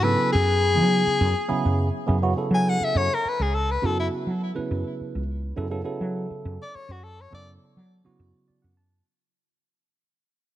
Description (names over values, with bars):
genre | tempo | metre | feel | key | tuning
jazz | 69 BPM (dotted quarters) | 6/8 | straight | F# minor | A4 = 436 Hz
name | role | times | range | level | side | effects
clear soprano saxophone | melody | 0.0-7.5 s | E4 to G#5 | -24 LUFS | left 3 dB | digital delay
barky tine electric piano | accompaniment | 0.0-9.0 s | C#3 to A5 | -28 LUFS | right 3 dB | phaser
woody fretless electric bass | bass | 0.0-9.0 s | C#2 to F#3 | -24 LUFS | equal | none
room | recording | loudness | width
light reverb, small room ambience | bright 1980s-style digital production | -21 LUFS | side -13 dB against mid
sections
0.0-2.1 A section; 2.1-9.1 B section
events
fade-out 2.1-9.1; soprano saxophone solo 2.1-9.1; tine electric piano fill 8.2-9.1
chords
0.3 F#sus2; 2.1 F#m7; 5.6 Bsus2/F#